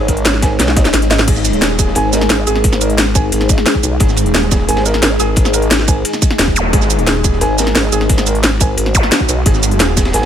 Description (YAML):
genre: dark technical drum and bass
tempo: 176 BPM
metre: 4/4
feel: straight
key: unclear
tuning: A4 = 441 Hz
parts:
  - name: deep dark ambient pad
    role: sustained chords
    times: 0.0-10.3 s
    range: G#3 to C#5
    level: -19 LUFS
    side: left 1 dB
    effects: chorus, built-in reverb, sidechain pumping
  - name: vowel-sweep wobble bass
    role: bass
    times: 0.0-10.3 s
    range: G#1 to B1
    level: -16 LUFS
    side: equal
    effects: chorus, tube saturation
  - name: felt-muted upright piano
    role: arpeggios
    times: 0.1-10.3 s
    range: G#4 to G#5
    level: -22 LUFS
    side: right 2 dB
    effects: sidechain pumping, ping-pong delay
  - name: crunchy breakbeat drum kit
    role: drums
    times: 0.1-10.3 s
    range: ride cymbal, snare drum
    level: -26 LUFS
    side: equal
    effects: high-pass filter on cymbals, high-pass filter on snare, high-pass filter on room
  - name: drum and bass drum kit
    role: drums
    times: 0.1-10.2 s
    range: crash cymbal, hi-hat, shaker, snare drum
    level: -16 LUFS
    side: equal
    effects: none
  - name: electronic kick drum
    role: drums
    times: 0.1-10.0 s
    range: none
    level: -14 LUFS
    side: equal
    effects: none
  - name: wide detuned saw bass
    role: bass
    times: 0.9-1.9, 4.0-7.4, 9.5-10.1 s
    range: D#1 to G#1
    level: -16 LUFS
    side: equal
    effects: chorus
  - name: zap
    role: sound effects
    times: 6.6, 8.9-9.0 s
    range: none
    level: -21 LUFS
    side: left 1 dB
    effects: none
room: studio ambience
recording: none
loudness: -11 LUFS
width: side -9 dB against mid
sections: 0.0-10.3 A section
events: drum fill 0.6-1.3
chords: 0.0 G#5